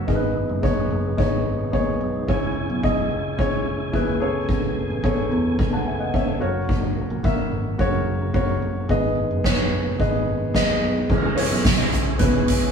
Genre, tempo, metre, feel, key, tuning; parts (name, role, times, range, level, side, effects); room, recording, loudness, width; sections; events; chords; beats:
piano-driven pop; 109 BPM; 4/4; straight; C# minor; A4 = 440 Hz
warm upright piano; accompaniment; 0.0-12.7 s; G#2 to A5; -25 LUFS; left 2 dB
tonewheel organ; sustained chords; 0.0-12.7 s; C#3 to G#5; -30 LUFS; right 3 dB; chorus vibrato, fast rotary speaker
picked electric bass; bass; 0.0-12.7 s; F#1 to E2; -28 LUFS; equal
soft-mallet drum kit; drums; 0.1-12.6 s; crash cymbal, hi-hat, kick drum, snare drum, toms; -22 LUFS; equal
moderate stone room reverb, RT60 0.9 s; band playing live in one room; -19 LUFS; side -6 dB against mid
0.0-11.1 A section; 11.1-12.7 B section
upright piano solo 11.1-12.7
0.1 G#m; 2.3 C#m; 4.2 Amaj7; 6.4 F#; 8.9 G#m; 11.1 C#m
| 0.08 0.63 1.18 1.73 | 2.28 2.83 3.38 3.94 | 4.49 5.04 5.59 6.14 | 6.69 7.24 7.79 8.34 | 8.89 9.45 10.00 10.55 | 11.10 11.65 12.20